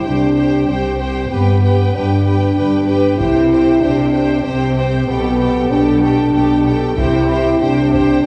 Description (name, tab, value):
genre	cinematic, epic orchestral film score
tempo	95 BPM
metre	3/4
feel	straight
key	unclear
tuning	A4 = 441 Hz
part	rich chamber violin section	melody	0.0-8.2 s	G5	-30 LUFS	equal	none
part	warm symphonic violin section	second line	0.0-8.2 s	A4 to C5	-26 LUFS	equal	none
part	warm symphonic viola section	accompaniment	0.0-8.3 s	G4	-26 LUFS	equal	none
part	mellow French horn section	sustained chords	0.1-8.2 s	B3 to E4	-18 LUFS	equal	none
part	warm studio cello section	bass	0.1-8.3 s	C2 to C3	-22 LUFS	equal	none
part	warm symphonic double bass section	bass	0.1-8.2 s	G1 to C2	-23 LUFS	equal	none
part	taiko ensemble	drums	3.2-8.2 s	none	-26 LUFS	equal	none
room	moderate scoring stage reverb, RT60 2.1 s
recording	small room reverb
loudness	-15 LUFS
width	mono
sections	0.0-8.3 A section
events	none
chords	0.0 C5; 1.3 G; 3.2 C; 5.1 Gadd9/B; 7.0 C